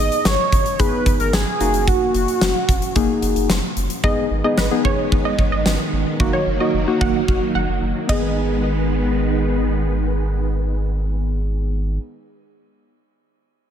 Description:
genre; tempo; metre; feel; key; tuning
synth-pop; 111 BPM; 4/4; straight; G# minor; A4 = 437 Hz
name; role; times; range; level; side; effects
octave-doubled lead; melody; 0.0-3.5 s; F#4 to D#5; -21 LUFS; right 1 dB; chorus, phaser, ping-pong delay
muted felt-like synth keys; accompaniment; 0.0-12.0 s; A#3 to G#4; -24 LUFS; left 2 dB; chorus, low-pass filter
round analog bass; bass; 0.0-12.0 s; F#1 to G#1; -23 LUFS; equal; none
huge arena drum kit; drums; 0.1-8.2 s; hi-hat, kick drum, ride cymbal, snare drum; -21 LUFS; equal; gated reverb
wide unison pluck; second line; 4.0-9.9 s; B4 to F#5; -25 LUFS; right 2 dB; auto-pan, ping-pong delay
string machine, violins; sustained chords; 4.0-12.0 s; D#3 to B3; -24 LUFS; right 1 dB; ensemble chorus, low-pass filter
room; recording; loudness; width
light reverb, studio ambience; none; -17 LUFS; side -9 dB against mid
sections
0.0-4.0 A section; 4.0-8.4 B section; 8.4-12.7 C section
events
filter sweep 4.0-8.4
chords
0.0 G#m; 1.6 D#m/F#; 4.0 G#m; 6.2 D#m/F#; 8.1 G#m

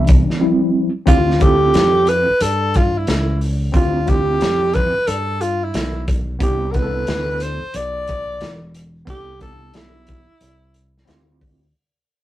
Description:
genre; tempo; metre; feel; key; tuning
hip hop, jazz-hop; 90 BPM; 4/4; swing 66% on 16ths; D dorian; A4 = 441 Hz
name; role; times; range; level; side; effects
tine electric piano; accompaniment; 0.0-11.7 s; E3 to A4; -20 LUFS; equal; overdrive, fast stereo tremolo
sustaining fretless electric bass; bass; 0.0-11.7 s; E1 to G2; -22 LUFS; equal; none
crunchy breakbeat drum kit; drums; 0.1-11.6 s; hi-hat, kick drum, snare drum; -18 LUFS; equal; none
breathy alto saxophone; melody; 1.1-11.1 s; E4 to D5; -19 LUFS; equal; none
room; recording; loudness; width
light reverb; rough rehearsal-room recording, tube saturation; -15 LUFS; side -14 dB against mid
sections
0.0-1.1 A section; 1.1-11.7 B section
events
tine electric piano solo 0.0-1.1; break 0.4-1.1; fade-out 1.1-11.7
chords
0.4 Cadd11/F; 1.1 Dm11; 6.4 Cmaj9; 11.1 Dm11

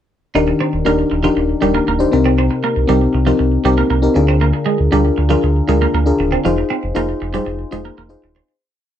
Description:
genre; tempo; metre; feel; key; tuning
pop; 118 BPM; 4/4; straight; Eb major; A4 = 436 Hz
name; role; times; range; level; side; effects
FM electric piano; accompaniment; 0.3-8.5 s; C3 to C5; -16 LUFS; left 3 dB; chorus
sub bass with octave; bass; 0.3-8.4 s; Eb1 to D2; -17 LUFS; right 1 dB; none
twelve-string electric guitar; riff; 0.4-8.5 s; F3 to Eb4; -21 LUFS; right 7 dB; wide subtle chorus, slapback echo
room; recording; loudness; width
light reverb; dry, close 1970s-style studio recording; -13 LUFS; side -10 dB against mid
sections
0.3-8.5 verse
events
fade-out 6.5-8.5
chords
0.3 Ebmaj7; 2.1 Cm7; 4.2 Bb7/D; 6.5 Fm7

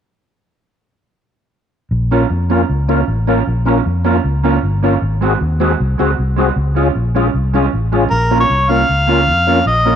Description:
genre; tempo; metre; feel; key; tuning
ska; 155 BPM; 4/4; straight; Bb minor; A4 = 440 Hz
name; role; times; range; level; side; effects
fingered electric bass; bass; 1.9-10.0 s; G1 to F2; -16 LUFS; equal; none
mellow electric guitar; accompaniment; 2.1-10.0 s; Ab3 to Gb4; -18 LUFS; right 11 dB; none
tonewheel organ; stabs; 2.1-10.0 s; C4 to Bb4; -19 LUFS; left 11 dB; overdrive, chorus vibrato, slow rotary speaker
mellow harmonica; melody; 8.1-10.0 s; Bb4 to F5; -13 LUFS; left 1 dB; none
room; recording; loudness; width
light reverb; 1960s-style stereo with parts hard left and right; -12 LUFS; side -8 dB against mid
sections
1.9-8.1 A section; 8.1-10.0 B section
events
none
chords
1.9 Bbm; 5.0 Ab7; 6.6 Db; 8.1 Bbm

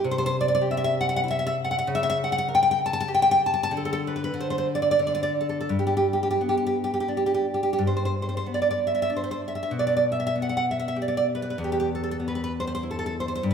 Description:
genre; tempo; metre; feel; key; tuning
romantic piece for solo classical guitar; 82-101 BPM; 3/4; rubato; G major; A4 = 440 Hz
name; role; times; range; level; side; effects
nylon-string guitar; solo; 0.0-13.5 s; E2 to A5; -22 LUFS; equal; none
room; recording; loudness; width
moderate concert hall reverb, RT60 2.2 s; recorded in a church or concert hall; -22 LUFS; side -7 dB against mid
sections
0.0-7.8 A section; 7.8-13.5 A section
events
none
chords
0.1 C; 1.9 C#dim7(no3); 3.7 N.C.; 5.7 G; 9.7 G/B; 11.6 E5

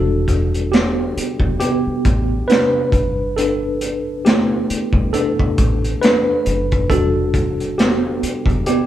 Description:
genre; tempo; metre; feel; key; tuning
R&B, neo-soul; 68 BPM; 4/4; swing 58% on 16ths; E minor; A4 = 440 Hz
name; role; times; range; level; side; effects
mellow tine electric piano; accompaniment; 0.0-8.9 s; G3 to B4; -18 LUFS; equal; medium stereo tremolo
deep dub fingered electric bass; bass; 0.0-8.6 s; E1 to A1; -22 LUFS; equal; none
crunchy breakbeat drum kit; drums; 0.3-8.9 s; finger snaps, hi-hat, kick drum, snare drum; -18 LUFS; equal; none
room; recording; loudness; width
moderate studio reverb, RT60 0.8 s; band playing live in one room; -15 LUFS; side -12 dB against mid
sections
0.0-8.9 A section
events
tine electric piano solo 0.0-8.9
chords
0.0 Em9; 2.9 G6; 6.9 Em9

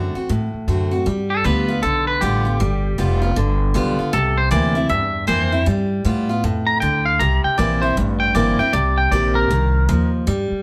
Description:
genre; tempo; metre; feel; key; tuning
rockabilly; 156 BPM; 4/4; swing 64% on 8ths; unclear; A4 = 440 Hz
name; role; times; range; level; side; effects
twangy electric guitar; melody; 0.0-10.1 s; G4 to Bb5; -22 LUFS; equal; none
picked steel-string acoustic guitar; accompaniment; 0.0-10.6 s; G2 to G4; -24 LUFS; equal; none
upright bass; bass; 0.0-10.5 s; F1 to A2; -22 LUFS; equal; none
room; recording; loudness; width
moderate large studio reverb, RT60 1.2 s; band playing live in one room; -19 LUFS; mono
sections
0.0-1.1 A section; 1.1-10.6 B section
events
clean electric guitar solo 1.1-10.6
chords
0.0 D7; 1.1 G7; 4.1 C7; 5.7 G7; 7.2 C7; 8.7 Cm7

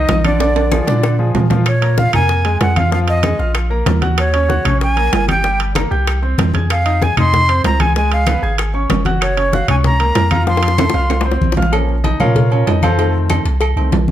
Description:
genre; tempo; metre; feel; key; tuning
latin, salsa; 191 BPM; 4/4; straight; Bb minor; A4 = 441 Hz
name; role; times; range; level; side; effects
breathy bright concert flute; melody; 0.0-11.4 s; Db5 to C6; -18 LUFS; right 1 dB; none
clear concert grand piano; accompaniment; 0.0-13.9 s; D3 to Ab6; -20 LUFS; left 1 dB; none
punchy sub bass; bass; 0.0-14.1 s; Gb1 to Bb2; -16 LUFS; equal; none
bongos and cowbell; percussion; 0.1-14.1 s; none; -24 LUFS; left 6 dB; none
congas; percussion; 0.1-14.1 s; none; -21 LUFS; left 1 dB; none
timbales and agogo bells; percussion; 0.1-14.1 s; none; -22 LUFS; right 6 dB; none
claves; percussion; 0.2-13.8 s; none; -30 LUFS; left 4 dB; none
room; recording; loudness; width
light reverb; dark, warm production; -12 LUFS; side -12 dB against mid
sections
0.0-1.7 A section; 1.7-11.7 B section; 11.7-14.1 C section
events
drum fill 0.4-1.7, 10.5-11.7; grand piano solo 11.7-14.1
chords
0.4 Bb7; 1.7 Bbm7; 2.9 Bb7sus4; 3.5 Bb5; 4.2 Ebm7; 5.4 Gm; 6.1 C5; 6.7 Fm7; 8.0 Db7; 9.2 Gbmaj7; 10.5 F; 11.7 Bbm; 13.0 F7

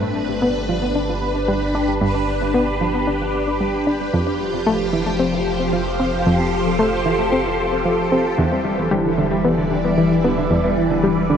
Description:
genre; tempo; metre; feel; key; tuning
ambient, sequencer-driven space music; 113 BPM; 4/4; straight; F lydian; A4 = 441 Hz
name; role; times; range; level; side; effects
phased string machine; sustained chords; 0.0-11.4 s; E3 to E5; -20 LUFS; equal; ensemble chorus, phaser
analog pluck; riff; 0.0-11.4 s; E2 to D4; -21 LUFS; equal; chorus, tape echo
warm sub bass; bass; 0.0-11.4 s; E1 to G1; -29 LUFS; equal; none
mellow electric guitar; arpeggios; 8.4-11.4 s; D3 to G3; -23 LUFS; right 1 dB; auto-pan, tape echo
room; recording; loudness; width
wet huge ambient reverb, RT60 7.4 s; worn, warbling old tape, cassette tape, warbly pitch drift; -17 LUFS; side -8 dB against mid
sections
0.0-11.4 A section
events
none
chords
0.0 G; 4.1 Fadd9; 8.4 Em7

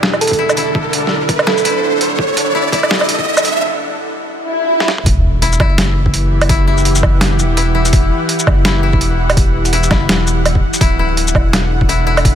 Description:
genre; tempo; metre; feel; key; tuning
half-time drum and bass; 167 BPM; 4/4; swing 57% on 16ths, half-time; E minor; A4 = 440 Hz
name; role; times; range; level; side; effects
bowed-like drone; sustained chords; 0.0-12.3 s; D3 to F#5; -20 LUFS; equal; built-in reverb, sidechain pumping
koto; arpeggios; 0.0-12.3 s; E4; -22 LUFS; left 6 dB; ping-pong delay
saturated sub bass; bass; 0.0-12.3 s; D1 to F#1; -17 LUFS; equal; none
boom bap sampler-style drum kit; drums; 0.0-12.3 s; hi-hat, shaker, snare drum, toms, woodblock; -17 LUFS; right 1 dB; overdrive
riser, swell and sub drop; sound effects; 0.0-6.5 s; none; -18 LUFS; right 1 dB; none
thumb-piano-like synth pluck; melody; 0.2-2.0 s; A4; -20 LUFS; right 5 dB; chorus, cassette tape, dub echo
electronic kick drum; drums; 0.3-12.3 s; none; -14 LUFS; equal; overdrive
room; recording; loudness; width
light reverb, digital ambience; high-pass filter; -11 LUFS; side -9 dB against mid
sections
0.0-5.1 A section; 5.1-12.3 B section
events
build-up 0.0-5.1; riser 0.0-3.6; filter sweep on koto 0.0-5.1; break 3.6-5.1; swell 4.4-5.1; drum fill 4.8; drop 5.1-12.3; impact 5.1-6.5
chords
0.0 D; 5.1 Emadd9; 10.8 D

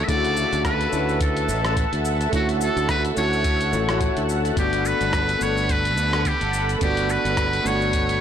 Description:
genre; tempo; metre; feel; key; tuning
sunset chillout; 107 BPM; 4/4; swing 57% on 16ths; G lydian; A4 = 440 Hz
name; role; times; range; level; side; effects
trumpet with metal mute; melody; 0.0-8.2 s; F#4 to E5; -24 LUFS; equal; vintage 12-bit sampler grit, ping-pong delay
warm grand piano; accompaniment; 0.0-8.2 s; C#3 to B4; -26 LUFS; moving between left 9 dB and right 7 dB; auto-pan, ping-pong delay
lush unison pad; sustained chords; 0.0-8.2 s; A4 to B5; -28 LUFS; right 1 dB; chorus
modern bright fingered electric bass; bass; 0.1-8.2 s; G1 to D2; -25 LUFS; equal; transformer saturation
dusty soul sampler-style drum kit; drums; 0.1-8.2 s; hi-hat, rim click, shaker; -31 LUFS; left 1 dB; soft clipping on snare
electronic kick drum; drums; 0.1-8.1 s; none; -26 LUFS; equal; none
room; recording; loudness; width
light reverb; blown-out, overdriven recording, overdrive; -19 LUFS; side -9 dB against mid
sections
0.0-8.2 A section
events
none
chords
0.0 Dmaj9; 4.6 Gmaj9

